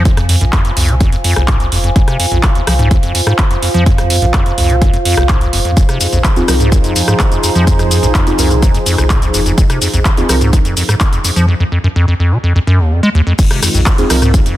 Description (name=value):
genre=acid house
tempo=126 BPM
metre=4/4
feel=straight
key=F minor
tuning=A4 = 439 Hz
part: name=acid bass, square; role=riff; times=0.0-14.6 s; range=F1 to Ab3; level=-14 LUFS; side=equal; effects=tube saturation, sidechain pumping
part: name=warm sub bass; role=bass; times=0.0-14.6 s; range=F1 to F2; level=-15 LUFS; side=equal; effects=tube saturation, sidechain pumping
part: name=warbly tape-like pad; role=texture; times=0.0-11.5 s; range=F4 to Bb5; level=-21 LUFS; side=right 2 dB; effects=chorus, built-in reverb, sidechain pumping
part: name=electro analog drum machine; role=drums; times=0.1-14.6 s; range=crash cymbal, handclaps, hi-hat, rim click, shaker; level=-18 LUFS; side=equal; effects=none
part: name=electronic kick drum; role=drums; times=0.1-14.4 s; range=none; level=-12 LUFS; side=equal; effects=none
part: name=warm analog pad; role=sustained chords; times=5.8-14.6 s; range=Eb3 to C5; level=-20 LUFS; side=equal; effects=chorus, tremolo, sidechain pumping
part: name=deep mellow chord stab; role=stabs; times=6.4-10.4, 14.0-14.2 s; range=C4 to Bb4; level=-18 LUFS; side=right 1 dB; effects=chorus, dub echo
room=light reverb, digital ambience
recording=dense, heavily limited modern master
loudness=-10 LUFS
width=side -14 dB against mid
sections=0.0-13.4 A section; 13.4-14.6 B section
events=drop 13.4-14.6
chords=0.0 Fm7